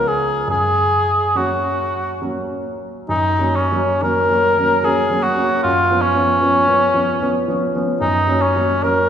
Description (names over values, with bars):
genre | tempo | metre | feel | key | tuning
classical, romantic duo for cor anglais and grand piano | 61-79 BPM | 3/4 | rubato | F# major | A4 = 442 Hz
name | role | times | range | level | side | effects
warm cor anglais | melody | 0.0-9.1 s | C#4 to A#4 | -16 LUFS | equal | none
clear concert grand piano | accompaniment | 0.0-9.1 s | C#2 to C#4 | -20 LUFS | right 1 dB | none
room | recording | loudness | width
wet concert hall reverb, RT60 2.0 s | heard from further back in the room | -15 LUFS | side -8 dB against mid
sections
0.0-3.1 A section; 3.1-9.1 B section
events
none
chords
0.5 F#; 5.6 C#7/F#; 8.0 F#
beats
| 0.49 1.36 2.22 | 3.10 4.03 4.86 | 5.64 6.41 7.20 | 8.01 8.84